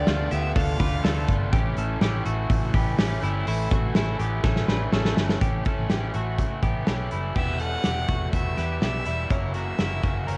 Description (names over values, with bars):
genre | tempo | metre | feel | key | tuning
jangly indie pop | 124 BPM | 4/4 | straight | A mixolydian | A4 = 438 Hz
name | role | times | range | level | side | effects
rich violin | melody | 0.0-1.2, 7.4-10.4 s | C#5 to F#5 | -34 LUFS | equal | none
rich studio violin section | second line | 0.0-1.2 s | D4 to F4 | -41 LUFS | equal | none
crunchy overdriven guitar | accompaniment | 0.0-10.4 s | E2 to F#4 | -34 LUFS | equal | cassette tape
twelve-string electric guitar | arpeggios | 0.0-10.4 s | G3 to B4 | -35 LUFS | equal | cassette tape
vintage muted fingered electric bass | bass | 0.0-10.4 s | E1 to E2 | -30 LUFS | equal | none
loose indie drum kit | drums | 0.1-10.4 s | crash cymbal, hi-hat, kick drum, snare drum | -28 LUFS | equal | cassette tape
room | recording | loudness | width
light reverb, small room ambience | home recording on cassette | -25 LUFS | mono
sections
0.0-5.4 A section; 5.4-7.4 B section; 7.4-10.4 C section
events
drum fill 4.4-5.4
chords
0.0 Dm6; 1.5 A; 7.4 Em; 9.3 F#7